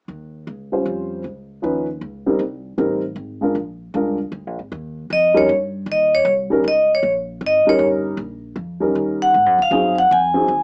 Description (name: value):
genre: jazz, small-group swing and bop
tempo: 156 BPM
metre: 3/4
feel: swing 65% on 8ths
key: Eb mixolydian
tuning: A4 = 438 Hz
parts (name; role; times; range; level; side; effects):
- upright bass; bass; 0.1-10.6 s; G1 to Ab2; -33 LUFS; equal; none
- warm upright piano; accompaniment; 0.7-10.5 s; F3 to C5; -22 LUFS; equal; none
- vibraphone with medium hard mallets; melody; 5.1-10.6 s; Db5 to Ab5; -17 LUFS; equal; none
room: moderate studio reverb, RT60 0.6 s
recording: small speaker sound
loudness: -19 LUFS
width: mono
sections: 0.1-4.7 A section; 4.7-10.6 B section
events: none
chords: 0.1 Eb13; 1.2 Db9; 2.4 Cm7; 3.6 Bb7; 4.7 Eb7; 8.2 Bbm; 9.0 Eb7; 9.3 Ab7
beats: | 0.09 0.47 0.86 | 1.24 1.63 2.02 | 2.40 2.79 3.17 | 3.56 3.94 4.33 | 4.71 5.10 5.49 | 5.87 6.25 6.64 | 7.03 7.41 7.80 | 8.18 8.57 8.95 | 9.34 9.72 10.11 | 10.49